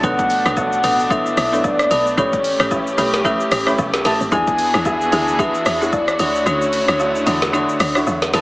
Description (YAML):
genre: amapiano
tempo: 112 BPM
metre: 4/4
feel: swing 58% on 16ths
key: B minor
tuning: A4 = 441 Hz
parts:
  - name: soft octave-layered synth lead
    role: melody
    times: 0.0-8.4 s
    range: C#5 to A5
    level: -20 LUFS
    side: equal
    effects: chorus, phaser, tape echo
  - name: warm baby grand piano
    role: accompaniment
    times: 0.0-8.4 s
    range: B2 to E5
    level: -23 LUFS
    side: right 1 dB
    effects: none
  - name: rich studio string section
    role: sustained chords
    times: 0.0-8.4 s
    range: D3 to C#5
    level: -25 LUFS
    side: equal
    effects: sidechain pumping
  - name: folk marimba with medium hard mallets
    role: stabs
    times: 0.0-8.0 s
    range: C#4 to C#5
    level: -25 LUFS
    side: left 1 dB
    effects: tape echo
  - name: woody log drum bass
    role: bass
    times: 0.0-8.4 s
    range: G1 to E2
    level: -26 LUFS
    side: equal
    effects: none
  - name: deep house drum kit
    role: drums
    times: 0.0-8.4 s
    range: hi-hat, kick drum, rim click, shaker, snare drum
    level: -22 LUFS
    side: equal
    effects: none
  - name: agogo bells and woodblock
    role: percussion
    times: 0.0-8.4 s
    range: none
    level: -23 LUFS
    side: left 1 dB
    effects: none
room: light reverb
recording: heavily compressed radio sound, small speaker sound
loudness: -15 LUFS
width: side -21 dB against mid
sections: 0.0-8.4 A section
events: kick muted 6.5-8.4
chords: 0.0 Bm7; 2.2 A7; 4.3 E7; 6.2 Dmaj7